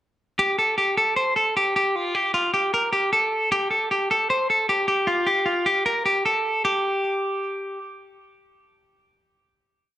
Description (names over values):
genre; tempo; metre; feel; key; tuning
indie pop; 153 BPM; 4/4; straight; unclear; A4 = 440 Hz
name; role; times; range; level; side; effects
clean electric guitar; solo; 0.4-7.8 s; F4 to C5; -20 LUFS; equal; spring reverb
room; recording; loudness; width
moderate club reverb, RT60 0.6 s; none; -20 LUFS; side -12 dB against mid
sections
0.4-6.6 pre-chorus; 6.6-9.8 final note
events
none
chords
none